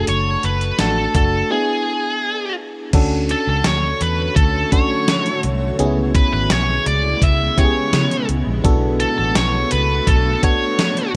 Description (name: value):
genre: 1980s-style pop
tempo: 84 BPM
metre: 4/4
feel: straight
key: unclear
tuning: A4 = 440 Hz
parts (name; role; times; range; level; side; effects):
- high-gain lead guitar; melody; 0.0-11.1 s; G#4 to E5; -23 LUFS; equal; distortion, delay, shimmer reverb
- FM electric piano; accompaniment; 0.0-11.2 s; A3 to A4; -25 LUFS; equal; chorus, shimmer reverb
- vintage muted fingered electric bass; bass; 0.0-10.3 s; F#1 to C#3; -23 LUFS; equal; none
- clean 12-bit digital drum machine; drums; 0.1-11.1 s; crash cymbal, hi-hat, kick drum, snare drum; -20 LUFS; equal; gated reverb
- granular cloud pad; sustained chords; 4.0-11.2 s; C#3 to C#5; -29 LUFS; equal; built-in reverb, shimmer reverb
room: light reverb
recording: none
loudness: -18 LUFS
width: mono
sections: 0.0-2.9 A section; 2.9-11.2 B section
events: break 1.5-2.9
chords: 0.0 D; 1.5 E7; 2.9 Dmaj7; 5.8 C#m7; 8.6 Bm7